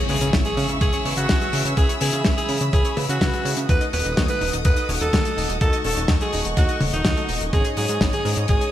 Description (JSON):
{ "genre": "italo disco", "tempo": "125 BPM", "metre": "4/4", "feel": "straight", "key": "C# minor", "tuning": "A4 = 440 Hz", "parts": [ { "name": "warm studio string section", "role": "sustained chords", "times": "0.0-8.7 s", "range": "G#4 to E6", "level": "-29 LUFS", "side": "equal", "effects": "none" }, { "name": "analog pluck", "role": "arpeggios", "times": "0.0-8.7 s", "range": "D#3 to D#5", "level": "-33 LUFS", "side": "right 3 dB", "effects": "chorus, digital delay" }, { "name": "analog synth brass", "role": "stabs", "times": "0.0-8.7 s", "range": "G#2 to F#5", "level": "-33 LUFS", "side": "left 2 dB", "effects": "chorus" }, { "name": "impact", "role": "sound effects", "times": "0.0-1.8 s", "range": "none", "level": "-31 LUFS", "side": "equal", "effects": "none" }, { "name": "raspy alto saxophone", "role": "melody", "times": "0.1-8.7 s", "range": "D#4 to B4", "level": "-25 LUFS", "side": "right 1 dB", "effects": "ping-pong delay" }, { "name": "chorused synth bass", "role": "bass", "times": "0.1-8.6 s", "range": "D#1 to C#3", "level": "-25 LUFS", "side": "equal", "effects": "tube saturation" }, { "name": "damped 70s drum kit", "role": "drums", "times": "0.1-8.7 s", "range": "hi-hat, snare drum, toms", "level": "-26 LUFS", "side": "left 2 dB", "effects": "small room ambience" }, { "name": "electronic kick drum", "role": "drums", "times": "0.3-8.6 s", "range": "none", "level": "-21 LUFS", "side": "equal", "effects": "small room ambience" } ], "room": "light reverb", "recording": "bright 1980s-style digital production", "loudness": "-18 LUFS", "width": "side -12 dB against mid", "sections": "0.0-8.7 A section", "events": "impact 0.0-1.8", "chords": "0.0 C#m; 3.7 D#dim; 7.5 G#sus4", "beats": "0.33 0.81 1.29 | 1.77 2.25 2.73 3.21 | 3.69 4.17 4.65 5.13 | 5.61 6.09 6.57 7.05 | 7.53 8.01 8.49" }